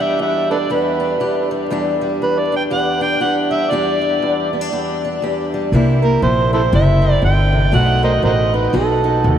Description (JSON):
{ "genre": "acoustic country blues, solo or duo", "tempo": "119 BPM", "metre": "4/4", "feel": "swing 60% on 8ths", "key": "E minor", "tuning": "A4 = 440 Hz", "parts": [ { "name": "overdriven harmonica", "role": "melody", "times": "0.0-9.4 s", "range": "E4 to G5", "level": "-18 LUFS", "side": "right 2 dB", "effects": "ping-pong delay" }, { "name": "fingerpicked steel-string acoustic guitar", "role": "accompaniment", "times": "0.0-9.4 s", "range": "E2 to G4", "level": "-19 LUFS", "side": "left 1 dB", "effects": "none" }, { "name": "upright bass", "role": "bass", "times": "5.7-9.4 s", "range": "F#1 to D#2", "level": "-15 LUFS", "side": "equal", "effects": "none" } ], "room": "wet huge ambient reverb, RT60 7.7 s", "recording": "dreamy mix soaked in reverb, vinyl crackle", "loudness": "-14 LUFS", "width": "side -9 dB against mid", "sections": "0.0-9.4 A section", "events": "none", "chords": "0.0 Em7; 5.7 C7; 7.7 B7" }